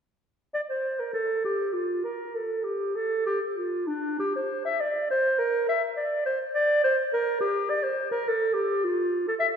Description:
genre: classical, baroque-style fantasia for unaccompanied clarinet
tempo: 92-107 BPM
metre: 3/4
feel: rubato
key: D minor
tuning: A4 = 444 Hz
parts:
  - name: mellow clarinet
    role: solo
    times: 0.5-9.5 s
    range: D4 to E5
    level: -24 LUFS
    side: equal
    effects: none
room: wet concert hall reverb, RT60 2.0 s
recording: heard from further back in the room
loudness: -24 LUFS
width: side -7 dB against mid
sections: 0.5-9.6 A section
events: none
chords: none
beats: | 0.55 1.15 1.75 | 2.35 2.95 3.56 | 4.19 4.81 5.39 | 5.97 6.55 7.13 | 7.70 8.27 8.84 | 9.42

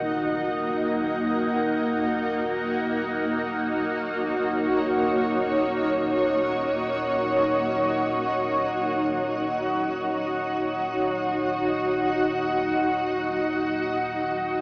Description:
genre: dark ambient drone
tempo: free time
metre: none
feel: none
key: Eb minor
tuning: A4 = 440 Hz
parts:
  - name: granular cloud pad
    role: sustained chords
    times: 0.0-14.6 s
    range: Bb3 to D#5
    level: -22 LUFS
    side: equal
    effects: built-in reverb
  - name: deep rumbling drone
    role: drone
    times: 0.0-14.6 s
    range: Eb2 to Bb2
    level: -42 LUFS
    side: equal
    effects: built-in reverb
  - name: bronze singing bowl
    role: texture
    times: 0.0-14.6 s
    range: Bb3 to Bb4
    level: -38 LUFS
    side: equal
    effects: none
room: wet huge ambient reverb, RT60 7.3 s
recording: worn, warbling old tape, cassette tape, warbly pitch drift, small speaker sound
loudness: -22 LUFS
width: side -29 dB against mid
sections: 0.0-14.6 A section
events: filter sweep on synth drone 0.0-14.6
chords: 0.0 Ebm7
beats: free time

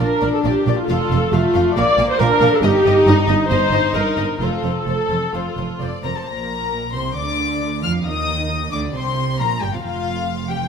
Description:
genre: quick classical-period movement for string orchestra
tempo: 135 BPM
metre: 4/4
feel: rubato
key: Bb major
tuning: A4 = 440 Hz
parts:
  - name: warm symphonic violin section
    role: melody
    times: 0.0-10.7 s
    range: C5 to F6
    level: -26 LUFS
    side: left 7 dB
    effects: none
  - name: warm symphonic violin section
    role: second line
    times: 0.0-10.6 s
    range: A3 to F5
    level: -25 LUFS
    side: left 4 dB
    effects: none
  - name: dark studio viola section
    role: accompaniment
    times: 0.0-10.7 s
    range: F3 to D5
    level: -20 LUFS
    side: equal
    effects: none
  - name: rich chamber double bass section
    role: bass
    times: 0.0-10.7 s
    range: F1 to F2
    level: -24 LUFS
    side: right 4 dB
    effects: none
  - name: warm studio cello section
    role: bass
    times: 0.0-10.7 s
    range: F2 to F3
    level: -24 LUFS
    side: right 3 dB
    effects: none
room: moderate concert hall reverb, RT60 1.8 s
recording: minimal, uncompressed stereo recording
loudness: -16 LUFS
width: side -6 dB against mid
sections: 0.0-6.3 A section; 6.3-10.7 B section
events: none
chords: 0.0 Bb; 0.9 F; 1.8 Bb; 2.6 Eb/G; 4.4 F; 6.3 Bb; 8.1 N.C.; 8.9 Bb5; 9.8 F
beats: 0.00 0.45 | 0.89 1.33 1.77 2.20 | 2.63 3.07 3.50 3.95 | 4.41 4.87 5.35 5.81 | 6.28 6.72 7.17 7.62 | 8.06 8.50 8.95 9.39 | 9.84 10.27

